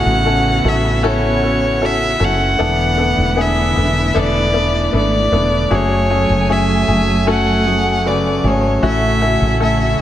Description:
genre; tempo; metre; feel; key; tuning
pop ballad; 77 BPM; 4/4; straight; A major; A4 = 440 Hz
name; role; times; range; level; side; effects
warm violin; melody; 0.0-10.0 s; C#5 to F#5; -18 LUFS; equal; none
clear baby grand piano; accompaniment; 0.0-10.0 s; A2 to B4; -18 LUFS; left 3 dB; none
warm studio string section; sustained chords; 0.0-10.0 s; C#3 to G#5; -21 LUFS; right 2 dB; none
woody fretless electric bass; bass; 0.0-10.0 s; E1 to A1; -18 LUFS; equal; none
room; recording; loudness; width
light reverb, studio ambience; none; -13 LUFS; side -12 dB against mid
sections
0.0-10.0 A section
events
none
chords
0.0 A6; 2.6 E7sus4; 5.7 F#madd9; 8.8 A6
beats
0.26 1.03 1.81 | 2.59 3.37 4.15 4.93 | 5.71 6.49 7.27 8.05 | 8.83 9.61

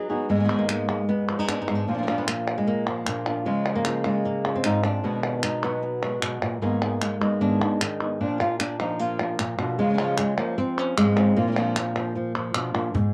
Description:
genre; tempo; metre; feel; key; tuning
flamenco; 152 BPM; 4/4; straight; Bb phrygian dominant; A4 = 437 Hz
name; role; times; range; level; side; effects
flamenco guitar; melody; 0.0-13.1 s; Ab2 to G#4; -27 LUFS; equal; tape echo
flamenco guitar; stabs; 0.1-13.0 s; Ab2 to Ab4; -31 LUFS; equal; cassette tape
palmas hand claps; percussion; 0.5-12.9 s; none; -31 LUFS; equal; none
cajon; percussion; 12.9-13.1 s; none; -30 LUFS; equal; none
room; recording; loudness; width
wet booth ambience, RT60 0.2 s; home recording on cassette; -25 LUFS; mono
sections
0.3-12.9 A section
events
break 0.0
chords
0.3 Abm; 1.9 Bb; 3.5 Db; 5.0 B6; 6.6 Abm; 8.2 Bb; 9.8 Db; 11.4 Bb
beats
| 0.29 0.69 1.08 1.48 | 1.88 2.27 2.67 3.06 | 3.46 3.86 4.25 4.65 | 5.04 5.44 5.83 6.23 | 6.63 7.02 7.42 7.81 | 8.21 8.60 9.00 9.39 | 9.79 10.19 10.58 10.97 | 11.37 11.77 12.16 12.55 | 12.95

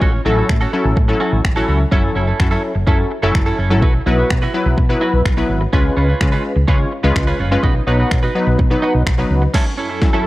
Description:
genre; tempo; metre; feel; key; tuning
dance-pop; 126 BPM; 4/4; straight; F# dorian; A4 = 440 Hz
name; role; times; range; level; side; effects
twelve-string electric guitar; riff; 0.0-10.3 s; C#4 to B4; -24 LUFS; right 3 dB; wide subtle chorus
woody fretless electric bass; bass; 0.0-9.5 s; F#1 to C#3; -17 LUFS; equal; sidechain pumping
deep house drum kit; drums; 0.0-10.1 s; crash cymbal, finger snaps, kick drum, snare drum; -17 LUFS; equal; none
funky polysynth comp; accompaniment; 0.3-10.3 s; F#3 to C#5; -18 LUFS; left 1 dB; chorus, sidechain pumping
ethereal airy pad; sustained chords; 9.8-10.3 s; F#2 to A4; -28 LUFS; right 3 dB; ensemble chorus, built-in reverb, sidechain pumping
room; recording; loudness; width
light reverb; worn, warbling old tape, cassette tape, warbly pitch drift; -13 LUFS; side -18 dB against mid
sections
0.0-9.5 A section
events
drum fill 9.5-10.3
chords
0.0 A6; 1.9 F#m7; 3.8 Bsus4; 5.7 C#7; 7.6 B; 9.5 F#m7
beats
| 0.02 0.49 0.97 1.45 | 1.92 2.40 2.87 3.35 | 3.83 4.30 4.78 5.25 | 5.73 6.21 6.68 7.16 | 7.64 8.11 8.59 9.06 | 9.54 10.02

